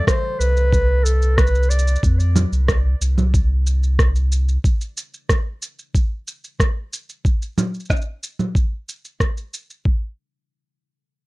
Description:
folktronica; 92 BPM; 4/4; straight; A4 = 440 Hz
warm clarinet; melody; 0.0-2.0 s; A4 to D5; -24 LUFS; equal; tape echo
concert harp; arpeggios; 0.0-2.6 s; A3 to E4; -39 LUFS; left 4 dB
electronic kick drum; drums; 0.1-10.0 s; -18 LUFS; equal; overdrive
electronic rim click, shaker and congas; drums; 0.1-9.8 s; -23 LUFS; right 1 dB
warm sub bass; bass; 0.4-4.6 s; C2 to F2; -17 LUFS; equal
light reverb; dark, warm production; -17 LUFS; side -22 dB against mid
0.0-9.9 A section; 9.9-11.3 B section

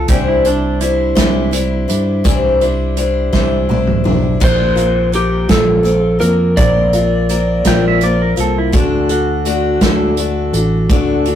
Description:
folk rock and heartland rock; 56 BPM (dotted quarters); 6/8; straight; A4 = 437 Hz
pedal steel guitar; second line; 0.0-2.2, 7.7-11.2 s; D4 to G5; -22 LUFS; right 6 dB
picked steel-string acoustic guitar; accompaniment; 0.0-11.4 s; Bb2 to C5; -17 LUFS; left 3 dB
fingered electric bass; bass; 0.0-11.4 s; A1 to G2; -17 LUFS; right 1 dB
unplugged drum kit; drums; 0.1-11.4 s; crash cymbal, hi-hat, kick drum, snare drum, toms; -16 LUFS; right 1 dB
electric slide guitar; melody; 4.4-8.3 s; G4 to D5; -16 LUFS; right 1 dB
light reverb; rough rehearsal-room recording, warm saturation; -12 LUFS; side -10 dB against mid
0.0-11.4 A section
drum fill 3.3-4.4
0.1 Cadd9; 4.4 Bbadd9; 8.7 D

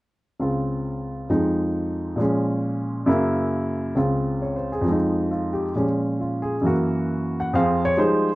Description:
solo jazz; 135 BPM; 4/4; swing 66% on 8ths; F minor; A4 = 439 Hz
warm upright piano; solo; 0.4-8.3 s; Db2 to Gb5; -20 LUFS; equal
moderate studio reverb, RT60 0.6 s; -21 LUFS; side -19 dB against mid
0.4-7.5 A section
0.4 Dbmaj7; 1.3 Fm7; 2.2 Bbm7; 3.1 Gb7; 4.0 Dbmaj7; 4.9 Fm7; 5.7 Bbm7; 6.6 Gb7; 7.5 Fm9

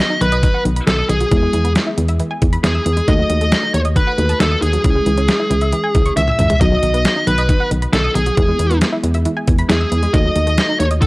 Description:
synth-pop; 136 BPM; 4/4; straight; A4 = 438 Hz
bluesy overdriven lead guitar; melody; 0.0-11.1 s; G#4 to E5; -18 LUFS; equal; distortion
muted felt-like synth keys; accompaniment; 0.0-11.1 s; F#3 to A4; -24 LUFS; left 1 dB; chorus
analog pluck; arpeggios; 0.1-11.1 s; D#3 to E6; -23 LUFS; right 1 dB; chorus, analog delay
solid FM bass; bass; 0.2-11.0 s; B1 to E2; -18 LUFS; equal; transformer saturation
detuned 8-bit digital drum machine; drums; 0.2-11.1 s; hi-hat, kick drum, snare drum, toms; -18 LUFS; equal
little or no reverb; dry, gritty hardware recording, cassette tape; -13 LUFS; side -21 dB against mid
0.0-11.1 A section
drum fill 6.2-6.6
0.0 B; 1.3 E; 3.1 D#dim; 4.8 C#m; 6.6 B; 8.4 E; 10.1 D#dim

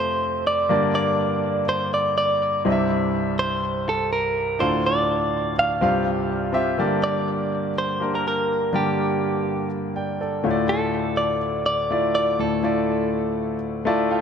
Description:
pop; 123 BPM; 4/4; swing 56% on 16ths; A4 = 440 Hz
direct-recorded clean electric guitar; melody; 0.0-13.1 s; G4 to F5; -23 LUFS; right 1 dB; spring reverb, tape echo
warm concert grand piano; accompaniment; 0.0-14.2 s; C2 to A5; -22 LUFS; left 1 dB; tape echo
light reverb, small room ambience; echo-heavy mix; -20 LUFS; side -7 dB against mid
0.0-6.8 A section; 6.8-14.2 B section
grand piano fill 13.6-14.2
0.0 F; 0.7 Gm; 2.7 C; 4.6 Dm; 5.8 Csus4; 6.8 Gm; 10.5 Dmadd9

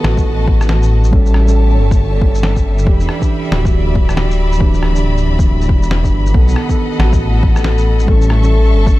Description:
future garage; 138 BPM; 4/4; swing 61% on 16ths; E dorian; A4 = 439 Hz
muted felt-like synth keys; accompaniment; 0.0-9.0 s; D#3 to A4; -20 LUFS; right 3 dB; chorus, sidechain pumping, tape echo
clear symphonic string section; sustained chords; 0.0-9.0 s; G3 to C#6; -24 LUFS; left 2 dB; sidechain pumping
dark detuned saw bass; bass; 0.0-9.0 s; D1 to B1; -13 LUFS; equal; sidechain pumping
electronic rim click, snare drum and shaker; drums; 0.0-8.9 s; -21 LUFS; left 1 dB; small room ambience
electronic kick drum; drums; 0.2-8.9 s; -14 LUFS; equal; overdrive, small room ambience
drifting glass-harmonics texture; texture; 7.2-9.0 s; A4; -25 LUFS; left 9 dB; chorus, built-in reverb
little or no reverb; echo-heavy mix; -10 LUFS; side -17 dB against mid
0.0-9.0 A section
0.0 B7; 1.1 A7; 2.9 Em7; 6.3 B7; 8.1 A7

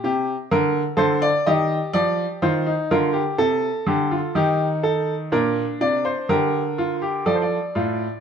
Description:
classical, baroque-style 3-part fugue for grand piano; 62 BPM; 4/4; straight; G minor; A4 = 440 Hz
bright baby grand piano; solo; 0.0-8.2 s; A2 to Eb5; -19 LUFS; equal
moderate stone room reverb, RT60 1.1 s; heard from further back in the room; -19 LUFS; side -7 dB against mid
0.0-7.3 A section
0.0 Gm; 1.5 Eb; 3.4 Am7b5/C; 5.3 Gm/Bb; 7.3 Dm

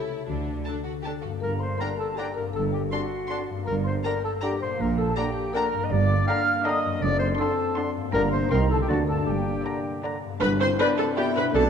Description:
cinematic, playful, whimsical film cue; 160 BPM; 3/4; straight; G minor; A4 = 440 Hz
marimba with medium mallets; melody; 0.0-11.7 s; B3 to F5; -31 LUFS; left 6 dB
rich chamber violin section; second line; 0.0-11.7 s; D4 to C6; -39 LUFS; left 2 dB
concert harp; arpeggios; 0.0-11.7 s; F#2 to D5; -34 LUFS; left 8 dB
dark chamber double bass section; bass; 0.3-11.7 s; F#1 to D2; -31 LUFS; right 4 dB
rich studio cello section; bass; 0.3-11.7 s; F#2 to D3; -32 LUFS; right 3 dB
rich chamber violin section; melody; 0.7-11.4 s; D5 to C6; -36 LUFS; left 4 dB
rich chamber viola section; accompaniment; 0.7-11.6 s; D4 to C5; -29 LUFS; right 2 dB
bright clarinet; second line; 1.4-11.3 s; F#4 to F5; -31 LUFS; left 1 dB
mellow flute section; second line; 1.4-11.2 s; F#5 to F6; -32 LUFS; right 1 dB
mellow tuba; bass; 1.4-11.7 s; F#1 to D2; -33 LUFS; right 4 dB
clear oboe; second line; 1.8-11.3 s; G5 to C6; -39 LUFS; left 1 dB
warm bassoon; accompaniment; 1.8-11.7 s; D3 to E4; -35 LUFS; right 2 dB
mellow French horn section; sustained chords; 1.8-11.7 s; G3 to Eb4; -34 LUFS; left 4 dB
tam-tam; percussion; 10.4-11.7 s; -36 LUFS; left 2 dB
moderate concert hall reverb, RT60 2.3 s; dark, warm production; -23 LUFS; side -7 dB against mid
0.0-1.4 A section; 1.4-10.4 B section; 10.4-11.7 C section
band accent 10.4-10.8
0.3 D; 1.4 Gm; 2.6 D7/G; 3.7 Gm; 4.8 Gm/Bb; 5.9 Gm; 7.0 D7/F#; 8.1 Gm; 8.5 Cm; 8.9 D; 9.3 Gm; 10.4 G

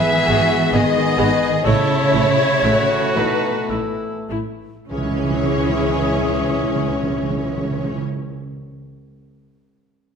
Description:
cinematic, emotional film score for orchestra; 49-69 BPM; 3/4; rubato; C# minor; A4 = 440 Hz
warm symphonic violin section; melody; 0.0-8.0 s; B4 to E5; -25 LUFS; left 4 dB
mellow clarinet; second line; 0.0-8.0 s; G#4 to E5; -25 LUFS; equal
silver concert flute; second line; 0.0-8.0 s; G#4 to E5; -26 LUFS; equal
warm cor anglais; second line; 0.0-4.3 s; E4 to B4; -26 LUFS; right 2 dB
warm symphonic violin section; second line; 0.0-8.0 s; C#4 to G#4; -26 LUFS; left 3 dB
mellow French horn section; sustained chords; 0.0-8.0 s; E3 to E4; -25 LUFS; left 5 dB
warm symphonic cello section; bass; 0.0-8.0 s; B2 to C#4; -25 LUFS; right 3 dB
timpani; percussion; 0.0-0.2, 4.9-8.0 s; C#3; -26 LUFS; right 2 dB
rich symphonic viola section; accompaniment; 0.3-8.0 s; E3 to G#4; -26 LUFS; right 1 dB
warm symphonic double bass section; bass; 0.3-8.0 s; G#1 to C#2; -25 LUFS; right 4 dB
wet scoring stage reverb, RT60 1.6 s; minimal, uncompressed stereo recording; -16 LUFS; side -6 dB against mid
0.0-4.9 A section; 4.9-8.5 B section
slowing down 0.0-4.9
0.0 G#m; 1.7 A; 4.9 C#m

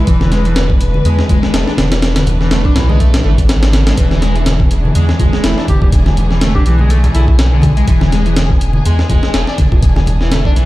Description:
breakbeat, breaks; 123 BPM; 4/4; swing 56% on 16ths; A4 = 440 Hz
clear alto saxophone; melody; 0.0, 5.4-7.3 s; E4 to G4; -25 LUFS; equal; small speaker sound, vintage 12-bit sampler grit, digital delay
dark symphonic string section; sustained chords; 0.0-10.7 s; E3 to B4; -21 LUFS; equal; sidechain pumping
overdriven synth lead; riff; 0.0-10.7 s; D3 to D4; -19 LUFS; left 1 dB; distortion, phaser, digital delay
saturated sub bass; bass; 0.1-10.7 s; D1 to E2; -14 LUFS; equal
breakbeat sampler-style drum kit; drums; 0.1-10.7 s; hi-hat, kick drum, snare drum; -14 LUFS; equal; studio reverb
congas and bongos; percussion; 0.2-10.4 s; -20 LUFS; left 1 dB
studio reverb; played on a big sound system in a bare room, large studio reverb; -10 LUFS; side -17 dB against mid
0.0-10.7 A section
0.0 E7

